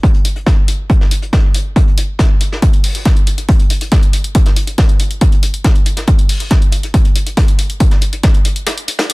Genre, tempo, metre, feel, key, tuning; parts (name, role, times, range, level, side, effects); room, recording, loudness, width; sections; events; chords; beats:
techno; 139 BPM; 4/4; straight
electronic kick drum; drums; 0.0-8.3 s; -11 LUFS; equal
vintage brush drum kit; drums; 0.0-9.1 s; hi-hat, snare drum; -23 LUFS; left 1 dB; high-pass filter on hats, high-pass filter on snare, high-pass filter on room, analog delay
electronic hi-hat; drums; 0.2-9.1 s; -22 LUFS; left 2 dB; sidechain pumping on hats
little or no reverb; echo-heavy mix; -10 LUFS; side -23 dB against mid
0.0-9.1 A section
break 8.7-9.1
0.03 0.47 | 0.90 1.33 1.76 2.19 | 2.62 3.06 3.49 3.92 | 4.35 4.78 5.21 5.64 | 6.08 6.51 6.94 7.37 | 7.80 8.23 8.67 9.10